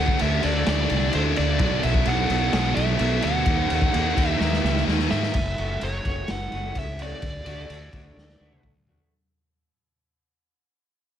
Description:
quiet-loud alternative rock; 128 BPM; 4/4; straight; A4 = 439 Hz
nasal lead guitar with a parked wah; melody; 0.0-8.6 s; C5 to F#5; -28 LUFS; right 2 dB; overdrive
thick fuzz guitar; riff; 0.0-5.3 s; B2 to D#4; -28 LUFS; right 13 dB; distortion
tight distorted guitar; riff; 0.0-5.3 s; B2 to D#4; -28 LUFS; left 15 dB; distortion
fuzz fingered electric bass; bass; 0.0-9.0 s; F#1 to G#2; -26 LUFS; left 1 dB; overdrive
raw garage drum kit; drums; 0.1-9.1 s; crash cymbal, kick drum, ride cymbal, snare drum, toms; -26 LUFS; equal
electric guitar through a small old amp; arpeggios; 5.6-9.1 s; D3 to F#4; -39 LUFS; left 1 dB; wide subtle chorus
light reverb; -20 LUFS; side -10 dB against mid
0.0-5.3 A section; 5.3-9.1 B section
drum fill 4.4-5.3, 8.2-9.1; fade-out 5.3-9.1
0.0 D; 1.6 Bm; 3.5 D#m; 5.3 F#m; 7.2 D
0.20 0.67 1.14 | 1.60 2.07 2.54 3.00 | 3.47 3.94 4.41 4.87 | 5.34 5.81 6.28 6.75 | 7.22 7.69 8.16 8.63

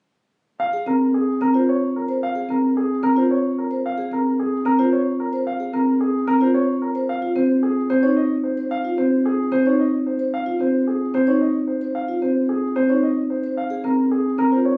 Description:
classical, minimalist pattern music; 111 BPM; 3/4; straight; Bb minor; A4 = 440 Hz
warm baby grand piano; melody; 0.6-14.8 s; Ab4 to F5; -27 LUFS; equal
marimba with soft mallets; arpeggios; 0.7-14.7 s; C4 to C5; -21 LUFS; equal
light reverb; recorded on a phone in the room, studio reverb, compression; -20 LUFS; mono
0.6-14.8 A section
0.6 Bb7(no3); 7.1 Dbadd9 (rootless); 13.6 Bb7(no3)
| 0.60 1.14 1.68 | 2.22 2.76 3.30 | 3.84 4.38 4.92 | 5.46 6.00 6.54 | 7.08 7.62 8.17 | 8.71 9.25 9.79 | 10.33 10.87 11.41 | 11.95 12.49 13.03 | 13.57 14.11 14.65

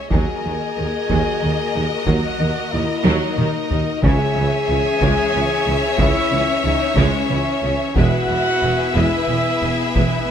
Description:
cinematic, epic orchestral film score; 61 BPM (dotted quarters); 6/8; straight; C# dorian; A4 = 440 Hz
warm symphonic violin section; melody; 0.0-10.3 s; D#5 to E5; -26 LUFS; left 3 dB
bright symphonic violin section; second line; 0.0-10.3 s; A#4 to C#5; -28 LUFS; left 5 dB
clear symphonic string section; sustained chords; 0.0-10.3 s; E3 to E5; -27 LUFS; left 3 dB
dark trumpet section; stabs; 0.0-10.3 s; B4 to G#5; -26 LUFS; right 2 dB
clear symphonic viola section; accompaniment; 0.1-10.3 s; C#3 to G#3; -28 LUFS; right 2 dB
mellow French horn section; sustained chords; 0.1-10.3 s; B3 to G#4; -24 LUFS; left 4 dB
clear symphonic double bass section; bass; 0.1-10.0 s; E1 to D#2; -25 LUFS; right 3 dB
mellow tuba; bass; 0.1-10.3 s; E1 to D#2; -26 LUFS; right 4 dB
rich symphonic cello section; bass; 0.1-10.0 s; E2 to D#3; -25 LUFS; right 2 dB
taiko ensemble; drums; 0.1-10.3 s; -22 LUFS; equal
timpani; percussion; 4.0-5.0 s; C#3; -24 LUFS; equal
light reverb; close, detailed microphones; -16 LUFS; side -8 dB against mid
0.0-10.3 A section
drum fill 3.1-4.0
0.1 D#m; 4.0 C#m; 8.0 E
| 0.11 1.09 | 2.07 3.05 | 4.04 5.02 | 5.99 6.97 | 7.96 8.95 | 9.95

